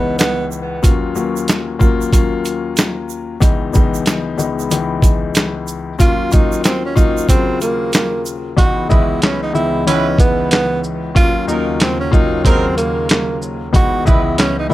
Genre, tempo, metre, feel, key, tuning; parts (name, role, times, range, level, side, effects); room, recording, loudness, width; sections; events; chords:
hip hop, boom-bap hip-hop; 93 BPM; 4/4; swing 63% on 16ths; C# dorian; A4 = 440 Hz
breathy tenor saxophone; melody; 0.0-0.5, 6.0-14.7 s; A#3 to F#4; -19 LUFS; right 3 dB; tape echo
dark baby grand piano; accompaniment; 0.0-14.7 s; C#2 to D#5; -19 LUFS; left 5 dB; cassette tape
boom bap sampler-style drum kit; drums; 0.2-14.7 s; handclaps, hi-hat, kick drum, shaker, snare drum; -14 LUFS; equal
tube shaker; percussion; 0.2-8.4 s; -30 LUFS; right 15 dB
warm analog pad; sustained chords; 8.6-14.7 s; C#2 to B3; -25 LUFS; right 3 dB; chorus
mellow horn section; stabs; 8.9-14.2 s; F#3 to B4; -24 LUFS; right 8 dB; tape echo
light reverb; -13 LUFS; side -16 dB against mid
0.0-8.6 A section; 8.6-14.7 B section
0.0 C#m7; 0.8 D#m7; 3.4 C#m7; 6.0 D#m7; 8.6 C#m7; 11.2 D#m7; 13.7 C#m7